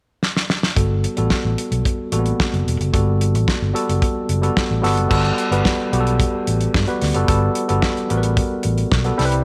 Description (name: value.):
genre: disco.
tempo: 111 BPM.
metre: 4/4.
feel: straight.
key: G major.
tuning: A4 = 439 Hz.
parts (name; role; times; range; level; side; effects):
damped 70s drum kit; drums; 0.2-9.4 s; crash cymbal, hi-hat, kick drum, snare drum; -23 LUFS; equal; none.
tine electric piano; accompaniment; 0.8-9.4 s; G3 to B4; -23 LUFS; equal; none.
fingered electric bass; bass; 0.8-9.4 s; E1 to G2; -22 LUFS; equal; none.
room: light reverb.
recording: none.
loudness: -19 LUFS.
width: mono.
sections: 0.8-5.1 A section; 5.1-9.4 B section.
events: drum fill 0.2-0.8.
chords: 0.0 N.C.; 0.8 Gmaj9.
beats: 0.22 | 0.77 1.31 1.85 2.39 | 2.94 3.48 4.02 4.57 | 5.11 5.65 6.19 6.74 | 7.28 7.82 8.36 8.90.